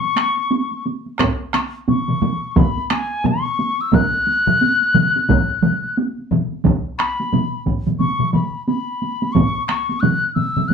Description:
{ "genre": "japanese traditional, taiko drum ensemble", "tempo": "88 BPM", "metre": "4/4", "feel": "swing 60% on 16ths", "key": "F# suspended pentatonic", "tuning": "A4 = 440 Hz", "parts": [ { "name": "mellow hollow piccolo", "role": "melody", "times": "0.0-10.7 s", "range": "G#5 to F#6", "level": "-20 LUFS", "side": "left 4 dB", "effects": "none" }, { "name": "taiko ensemble", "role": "percussion", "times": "0.0-10.7 s", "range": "none", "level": "-23 LUFS", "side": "right 2 dB", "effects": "none" }, { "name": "taiko ensemble", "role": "percussion", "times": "0.2-10.7 s", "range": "none", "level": "-24 LUFS", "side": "left 2 dB", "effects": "none" }, { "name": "taiko ensemble", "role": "percussion", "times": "0.2-10.7 s", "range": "none", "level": "-20 LUFS", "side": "right 2 dB", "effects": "none" }, { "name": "taiko ensemble", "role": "percussion", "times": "1.2-9.5 s", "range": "none", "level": "-21 LUFS", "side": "right 2 dB", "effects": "none" } ], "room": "wet studio reverb, RT60 0.6 s", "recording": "band playing live in one room", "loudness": "-16 LUFS", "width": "side -6 dB against mid", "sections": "0.0-6.6 A section; 6.6-10.7 B section", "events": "none", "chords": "none", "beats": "0.51 | 1.19 1.88 2.56 3.25 | 3.93 4.61 5.29 5.97 | 6.65 7.33 8.00 8.68 | 9.35 10.03 10.70" }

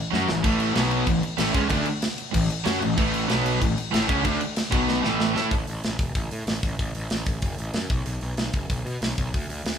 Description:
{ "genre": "punk rock", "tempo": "189 BPM", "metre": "4/4", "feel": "straight", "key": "A major", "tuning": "A4 = 442 Hz", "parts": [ { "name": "cranked stack guitar", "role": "riff", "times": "0.1-5.5 s", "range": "A2 to A4", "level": "-27 LUFS", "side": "right 8 dB", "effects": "overdrive" }, { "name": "distorted electric guitar", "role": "riff", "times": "0.1-5.5 s", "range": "A2 to A4", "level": "-28 LUFS", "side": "left 6 dB", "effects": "distortion" }, { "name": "fuzz guitar", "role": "riff", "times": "0.1-5.5 s", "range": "A2 to A4", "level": "-28 LUFS", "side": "equal", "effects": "distortion" }, { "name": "fuzz picked electric bass", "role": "bass", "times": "0.1-9.8 s", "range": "E1 to B2", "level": "-30 LUFS", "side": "equal", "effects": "overdrive" }, { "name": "tight metal drum kit", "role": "drums", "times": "0.1-9.7 s", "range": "crash cymbal, hi-hat, kick drum, snare drum, splash cymbal", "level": "-26 LUFS", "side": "equal", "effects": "none" } ], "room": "moderate large studio reverb, RT60 1.0 s", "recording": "band playing live in one room", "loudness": "-22 LUFS", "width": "side -8 dB against mid", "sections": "0.0-5.5 A section; 5.5-9.8 B section", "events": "drum fill 0.1-0.4, 4.9-5.5", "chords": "0.0 A; 0.8 B5; 1.1 A; 3.3 B5; 3.6 A; 4.7 B5; 5.0 A5; 7.9 B5", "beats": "0.13 | 0.45 0.76 1.08 1.40 | 1.71 2.03 2.35 2.66 | 2.98 3.29 3.61 3.93 | 4.25 4.56 4.88 5.20 | 5.52 5.83 6.15 6.47 | 6.79 7.11 7.42 7.74 | 8.06 8.38 8.70 9.02 | 9.34 9.65" }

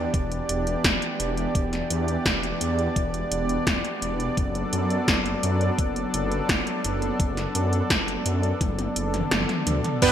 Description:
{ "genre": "synthwave", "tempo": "85 BPM", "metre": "4/4", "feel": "straight", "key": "unclear", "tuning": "A4 = 442 Hz", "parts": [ { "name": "warm analog pad", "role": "sustained chords", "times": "0.0-10.1 s", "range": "E3 to D5", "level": "-27 LUFS", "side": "equal", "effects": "chorus, sidechain pumping" }, { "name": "wide detuned saw bass", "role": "bass", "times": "0.0-10.1 s", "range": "E1 to F#2", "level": "-28 LUFS", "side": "equal", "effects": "chorus, tube saturation, sidechain pumping" }, { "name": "80s electronic pad drums", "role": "drums", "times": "0.1-10.1 s", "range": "crash cymbal, hi-hat, snare drum, toms", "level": "-26 LUFS", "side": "equal", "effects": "gated reverb on snare and toms, gated reverb" }, { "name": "electronic kick drum", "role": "drums", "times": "0.1-10.1 s", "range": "none", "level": "-26 LUFS", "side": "equal", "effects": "overdrive" }, { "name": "chorused polysynth", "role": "stabs", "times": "10.0-10.1 s", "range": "G2 to B4", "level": "-16 LUFS", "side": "right 4 dB", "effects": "cassette tape" } ], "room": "moderate plate reverb, RT60 2.4 s", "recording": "bright 1980s-style digital production", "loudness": "-22 LUFS", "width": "side -10 dB against mid", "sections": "0.0-10.0 A section", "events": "drum fill 8.6-10.0; kick drops out 9.3-10.0", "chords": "0.0 Em7; 4.4 Bm7/F#", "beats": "0.14 0.84 | 1.55 2.26 2.96 3.67 | 4.37 5.08 5.79 6.49 | 7.20 7.90 8.61 9.31 | 10.02" }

